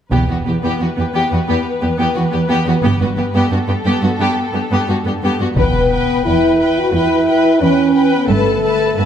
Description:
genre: cinematic, epic orchestral film score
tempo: 88 BPM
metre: 4/4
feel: straight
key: E dorian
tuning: A4 = 439 Hz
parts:
  - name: rich symphonic violin section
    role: melody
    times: 0.1-9.1 s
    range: A4 to A5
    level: -25 LUFS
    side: left 3 dB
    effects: none
  - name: warm symphonic violin section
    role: second line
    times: 0.1-9.1 s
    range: F#4 to B4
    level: -21 LUFS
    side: left 4 dB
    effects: none
  - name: rich studio viola section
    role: accompaniment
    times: 0.1-9.1 s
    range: B3 to B4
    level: -20 LUFS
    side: equal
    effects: none
  - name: rich symphonic cello section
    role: bass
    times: 0.1-9.1 s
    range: E2 to G2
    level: -19 LUFS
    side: right 2 dB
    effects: none
  - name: warm symphonic double bass section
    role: bass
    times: 0.1-8.9 s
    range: E1 to G1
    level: -21 LUFS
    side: right 2 dB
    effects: none
  - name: taiko ensemble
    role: drums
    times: 0.1-1.4, 5.6-6.9 s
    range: none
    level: -22 LUFS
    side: equal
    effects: none
  - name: dark French horn section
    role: sustained chords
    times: 5.6-9.1 s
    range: A3 to F#4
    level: -14 LUFS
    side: equal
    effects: none
  - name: impact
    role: sound effects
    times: 5.6-8.3 s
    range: none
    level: -25 LUFS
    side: left 1 dB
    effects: none
room: wet scoring stage reverb, RT60 1.7 s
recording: none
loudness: -13 LUFS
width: side -9 dB against mid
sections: 0.1-5.6 A section; 5.6-9.1 B section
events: impact 5.6-8.3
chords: 0.1 Em; 2.8 Gadd9; 5.6 Em; 8.3 Gadd9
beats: | 0.12 0.80 1.48 2.15 | 2.82 3.50 4.18 4.87 | 5.56 6.25 6.93 7.61 | 8.29 8.97

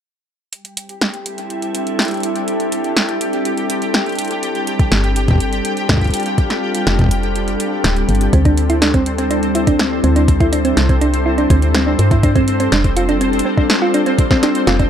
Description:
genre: IDM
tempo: 123 BPM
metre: 4/4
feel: straight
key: D minor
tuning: A4 = 443 Hz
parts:
  - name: glassy FM pad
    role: sustained chords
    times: 1.3-14.9 s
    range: G3 to A4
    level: -20 LUFS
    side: left 1 dB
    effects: ensemble chorus, built-in reverb
  - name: electro analog drum machine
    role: drums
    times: 0.5-14.9 s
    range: hi-hat, snare drum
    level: -20 LUFS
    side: equal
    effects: small room ambience
  - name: pulsing gated texture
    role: texture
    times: 0.8-14.9 s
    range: C4 to G5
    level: -24 LUFS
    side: left 2 dB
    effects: chorus, built-in reverb
  - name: electronic kick drum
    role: drums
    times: 4.8-14.9 s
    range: none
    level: -14 LUFS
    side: equal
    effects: overdrive, small room ambience
  - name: woody FM bass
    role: bass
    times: 4.9-14.9 s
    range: D1 to G2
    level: -17 LUFS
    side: equal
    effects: none
  - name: thumb-piano-like synth pluck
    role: arpeggios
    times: 8.3-14.9 s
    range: C4 to F4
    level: -18 LUFS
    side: right 2 dB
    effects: chorus, tape echo
room: little or no reverb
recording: dry, gritty hardware recording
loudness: -13 LUFS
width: side -9 dB against mid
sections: 0.5-8.3 A section; 8.3-14.9 B section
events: kick drops out 7.4-8.3; drum fill 8.1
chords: 0.5 D9sus4; 4.4 G9sus4; 8.3 D9sus4; 12.2 G9sus4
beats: | 0.53 1.01 1.50 1.99 | 2.48 2.97 3.45 3.94 | 4.43 4.92 5.41 5.89 | 6.38 6.87 7.36 7.84 | 8.33 8.82 9.31 9.79 | 10.28 10.77 11.26 11.75 | 12.23 12.72 13.21 13.70 | 14.19 14.67

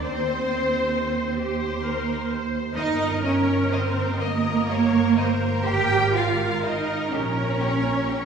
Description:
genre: classical, slow romantic movement for string orchestra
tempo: 41-45 BPM (dotted quarters)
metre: 6/8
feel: rubato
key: unclear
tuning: A4 = 440 Hz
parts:
  - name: warm symphonic violin section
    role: melody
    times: 0.0-8.2 s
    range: G4 to Eb5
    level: -34 LUFS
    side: left 5 dB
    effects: none
  - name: warm symphonic violin section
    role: second line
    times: 0.0-8.2 s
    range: Bb4 to G5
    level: -29 LUFS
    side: left 2 dB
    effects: none
  - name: rich symphonic viola section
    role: accompaniment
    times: 0.0-8.2 s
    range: G4 to Eb5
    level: -29 LUFS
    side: equal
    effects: none
  - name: warm studio double bass section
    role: bass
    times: 0.0-8.2 s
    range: G1 to Eb2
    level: -27 LUFS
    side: right 2 dB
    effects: none
  - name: warm symphonic cello section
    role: bass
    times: 0.0-8.2 s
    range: Bb3 to G4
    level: -24 LUFS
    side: right 4 dB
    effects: none
room: wet scoring stage reverb, RT60 1.9 s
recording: heard from further back in the room, small room ambience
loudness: -21 LUFS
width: side -6 dB against mid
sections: 0.0-8.2 A section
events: none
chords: 0.0 Cm/Eb; 2.8 Eb7/G; 5.7 Ab5; 7.1 Bbm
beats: | 0.03 1.40 | 2.77 4.21 | 5.66 7.12

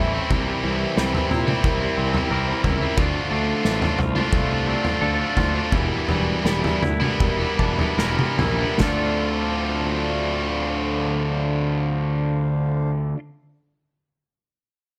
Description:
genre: post-rock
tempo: 72-90 BPM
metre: 4/4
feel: straight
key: D minor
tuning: A4 = 438 Hz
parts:
  - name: pedal harmonium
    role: sustained chords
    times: 0.0-12.9 s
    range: D3 to G5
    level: -35 LUFS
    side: equal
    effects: none
  - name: twangy electric guitar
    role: arpeggios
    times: 0.0-13.2 s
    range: C3 to C5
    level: -32 LUFS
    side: equal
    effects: spring reverb, slapback echo
  - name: vibraphone with medium hard mallets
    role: arpeggios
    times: 0.0-9.2 s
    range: A4 to C6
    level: -36 LUFS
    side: equal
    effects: slapback echo
  - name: tight distorted guitar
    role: riff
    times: 0.0-13.2 s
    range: A2 to F4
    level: -26 LUFS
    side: equal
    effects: distortion
  - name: fuzz picked electric bass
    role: bass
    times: 0.0-13.1 s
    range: E1 to Bb2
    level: -29 LUFS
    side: equal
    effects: overdrive
  - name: loose indie drum kit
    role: drums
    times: 0.3-9.0 s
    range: kick drum, snare drum, toms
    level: -27 LUFS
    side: equal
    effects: none
room: light reverb, studio ambience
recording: none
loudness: -22 LUFS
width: mono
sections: 0.0-8.8 A section; 8.8-12.2 B section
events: slowing down 3.0-8.8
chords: 0.3 C7; 3.0 Dm7; 5.7 Em7b5; 8.8 Dm7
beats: | 0.31 0.97 1.64 2.31 | 2.98 3.65 4.33 5.02 | 5.72 6.45 7.20 7.99 | 8.80 9.64 10.47 11.31

